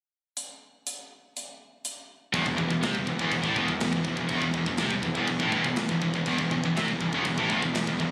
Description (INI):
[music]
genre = heavy metal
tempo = 122 BPM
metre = 4/4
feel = straight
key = unclear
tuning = A4 = 440 Hz
[part]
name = tight metal drum kit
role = drums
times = 0.4-8.1 s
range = crash cymbal, hi-hat, kick drum, snare drum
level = -36 LUFS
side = equal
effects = none
[part]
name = scooped high-gain guitar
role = riff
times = 2.3-8.1 s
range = E2 to C3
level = -33 LUFS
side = equal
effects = distortion
[part]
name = fuzz picked electric bass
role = bass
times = 2.3-8.1 s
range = E1 to C2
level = -33 LUFS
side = equal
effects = overdrive
[part]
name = scooped high-gain guitar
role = riff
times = 2.4-8.1 s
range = E2 to C3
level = -31 LUFS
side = equal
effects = distortion
[sound]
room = light reverb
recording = recorded on a phone in the room, club reverb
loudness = -28 LUFS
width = mono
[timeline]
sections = 0.4-2.3 A section; 2.3-8.1 B section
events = none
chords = 0.4 N.C.; 2.3 Fmaj7/E (rootless)